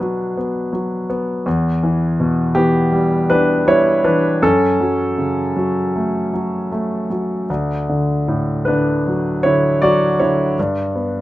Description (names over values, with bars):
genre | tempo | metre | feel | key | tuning
classical, lyrical solo piano | 80 BPM | 4/4 | rubato | D major | A4 = 440 Hz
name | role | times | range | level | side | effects
warm grand piano | solo | 0.0-11.2 s | D2 to D5 | -15 LUFS | equal | none
room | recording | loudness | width
light reverb | close, detailed microphones | -15 LUFS | side -16 dB against mid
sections
0.0-11.2 A section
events
none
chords
0.0 Bm; 1.5 Em; 4.4 F#m; 7.5 D; 10.6 G